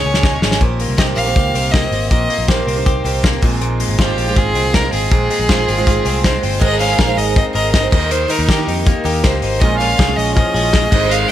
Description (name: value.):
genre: jangly indie pop.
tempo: 160 BPM.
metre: 4/4.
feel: straight.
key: Bb dorian.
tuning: A4 = 442 Hz.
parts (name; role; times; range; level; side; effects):
rich violin; melody; 0.0-11.3 s; G4 to G5; -20 LUFS; equal; plate reverb.
picked twelve-string acoustic guitar; accompaniment; 0.0-11.3 s; Ab2 to C5; -22 LUFS; right 8 dB; plate reverb.
direct-recorded clean electric guitar; arpeggios; 0.0-11.3 s; Bb2 to Bb4; -22 LUFS; left 4 dB; plate reverb, analog delay.
vintage muted picked electric bass; bass; 0.0-11.2 s; G1 to Eb3; -20 LUFS; equal; none.
loose indie drum kit; drums; 0.1-11.2 s; crash cymbal, hi-hat, kick drum, snare drum; -16 LUFS; equal; none.
room: light reverb.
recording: none.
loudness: -13 LUFS.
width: side -12 dB against mid.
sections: 0.0-6.6 A section; 6.6-11.3 B section.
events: drum fill 0.0-0.6.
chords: 0.0 Eb7sus4; 0.6 Cm7; 3.4 Fm7; 6.6 Abadd9; 7.9 Eb; 9.6 Bbm7.